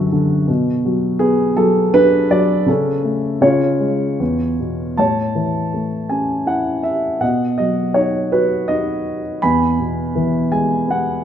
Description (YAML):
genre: classical, lyrical solo piano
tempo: 81 BPM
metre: 3/4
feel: rubato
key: A major from 5.0 s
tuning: A4 = 440 Hz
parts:
  - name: dark grand piano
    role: solo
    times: 0.0-11.2 s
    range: E2 to B5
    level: -15 LUFS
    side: equal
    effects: none
room: moderate concert hall reverb, RT60 2.0 s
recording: minimal, uncompressed stereo recording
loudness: -15 LUFS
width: side -9 dB against mid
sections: 0.0-5.0 A section; 5.0-11.2 B section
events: none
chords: 0.5 Bm; 2.7 A/C#; 3.4 C#; 4.2 E5; 5.0 A; 7.2 B; 9.4 E